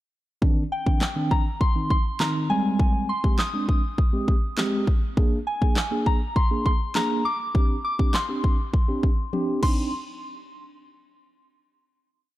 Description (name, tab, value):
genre	dance-pop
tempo	101 BPM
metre	4/4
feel	straight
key	C minor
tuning	A4 = 440 Hz
part	mellow tine electric piano	accompaniment	0.4-9.9 s	Eb3 to Ab4	-28 LUFS	right 1 dB	medium stereo tremolo, sidechain pumping
part	pop drum kit	drums	0.4-9.8 s	crash cymbal, handclaps, kick drum, snare drum, toms	-22 LUFS	equal	none
part	soft synth bell	melody	0.7-9.9 s	G5 to Eb6	-29 LUFS	left 2 dB	chorus, tape echo
room	little or no reverb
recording	dark, warm production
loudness	-21 LUFS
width	side -16 dB against mid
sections	0.4-9.9 verse; 9.9-12.3 final hit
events	drum fill 9.3-9.9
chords	0.4 Cmadd9; 2.5 Abmaj7; 5.2 Bb7; 7.5 Gsus4; 9.6 Cmadd9; 9.9 N.C.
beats	| 0.42 1.01 1.61 2.20 | 2.79 3.39 3.98 4.58 | 5.17 5.77 6.36 6.95 | 7.55 8.14 8.74 9.33